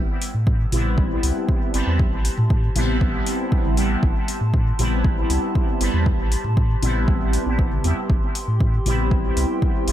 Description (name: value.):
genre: dub techno.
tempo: 118 BPM.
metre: 4/4.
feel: straight.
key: A minor.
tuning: A4 = 441 Hz.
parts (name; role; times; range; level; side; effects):
warbly tape-like pad; sustained chords; 0.7-9.9 s; G4 to C6; -32 LUFS; right 1 dB; chorus, built-in reverb, sidechain pumping.
warm sub bass; bass; 0.0-9.9 s; G1 to A2; -22 LUFS; equal; sidechain pumping.
electronic hi-hat; drums; 0.2-9.9 s; none; -30 LUFS; left 2 dB; overdrive.
electronic kick drum; drums; 0.5-9.7 s; none; -21 LUFS; equal; overdrive.
resonant sweep polysynth; stabs; 0.7-9.9 s; G3 to E4; -25 LUFS; equal; chorus, phaser, sidechain pumping, dub echo.
electronic toms; percussion; 0.7-9.0 s; none; -28 LUFS; left 1 dB; sidechain pumping on toms.
room: little or no reverb.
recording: none.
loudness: -18 LUFS.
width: side -12 dB against mid.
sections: 0.0-9.9 A section.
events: none.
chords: 0.0 Am7.